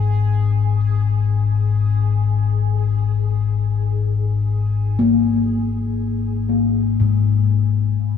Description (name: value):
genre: dark ambient drone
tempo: free time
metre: none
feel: none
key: unclear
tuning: A4 = 440 Hz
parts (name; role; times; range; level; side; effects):
- deep rumbling drone; drone; 0.0-8.2 s; G#1 to G#2; -18 LUFS; left 5 dB; built-in reverb, ensemble chorus
- bubbling stepped-filter texture; texture; 0.0-8.2 s; G#4 to B5; -36 LUFS; right 3 dB; chorus, built-in reverb
- gamelan-type bossed gongs; arpeggios; 5.0-8.2 s; G#2 to A#3; -18 LUFS; left 5 dB; analog delay
room: wet lush hall reverb, RT60 2.7 s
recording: dreamy mix soaked in reverb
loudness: -16 LUFS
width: side -7 dB against mid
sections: 0.0-8.0 A section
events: fade-out on synth texture 0.0-8.0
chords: none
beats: free time